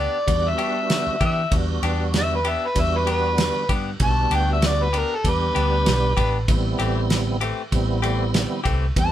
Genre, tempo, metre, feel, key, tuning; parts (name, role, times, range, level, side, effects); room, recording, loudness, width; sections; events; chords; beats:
straight-eighth soul blues; 97 BPM; 4/4; swing 55% on 16ths; E minor; A4 = 438 Hz
overdriven harmonica; melody; 0.0-9.1 s; A4 to A5; -23 LUFS; left 1 dB
direct-recorded clean electric guitar; stabs; 0.0-8.9 s; E3 to G4; -27 LUFS; left 5 dB
vintage muted fingered electric bass; bass; 0.0-9.1 s; A1 to E3; -24 LUFS; equal
tonewheel organ; accompaniment; 0.3-9.1 s; G3 to G4; -27 LUFS; right 2 dB; chorus vibrato, slow rotary speaker
warm soul drum kit; drums; 0.3-9.1 s; kick drum, ride cymbal, snare drum; -25 LUFS; equal
light reverb; band playing live in one room; -19 LUFS; side -12 dB against mid
0.0-9.1 A section
harmonica solo 0.0-9.1
0.0 Em7; 6.5 Am7
0.28 0.90 | 1.52 2.14 2.76 3.38 | 4.00 4.63 5.25 5.87 | 6.49 7.11 7.73 8.35 | 8.96